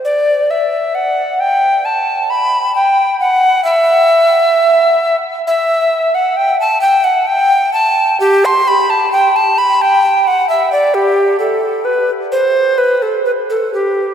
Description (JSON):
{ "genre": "classical, baroque-style fantasia for unaccompanied recorder", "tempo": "66 BPM", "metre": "3/4", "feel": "rubato", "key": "E minor, G major from 5.5 s", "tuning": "A4 = 440 Hz", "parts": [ { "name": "mellow tenor recorder", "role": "solo", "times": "0.0-14.1 s", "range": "G4 to C6", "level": "-11 LUFS", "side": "equal", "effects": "none" } ], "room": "wet cathedral reverb, RT60 6.0 s", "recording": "none", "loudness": "-10 LUFS", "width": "side -8 dB against mid", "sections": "0.0-14.1 A section", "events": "none", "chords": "none" }